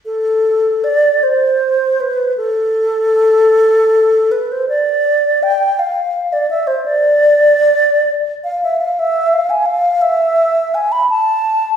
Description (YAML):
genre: classical, free, expressive piece for unaccompanied alto flute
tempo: 47-58 BPM (dotted quarters)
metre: 6/8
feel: rubato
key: A minor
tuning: A4 = 440 Hz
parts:
  - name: alto flute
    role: solo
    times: 0.1-11.8 s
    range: A4 to B5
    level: -12 LUFS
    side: equal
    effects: none
room: wet recital hall reverb, RT60 1.3 s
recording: recorded in a church or concert hall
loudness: -12 LUFS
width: side -8 dB against mid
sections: 0.0-11.8 A section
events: none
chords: none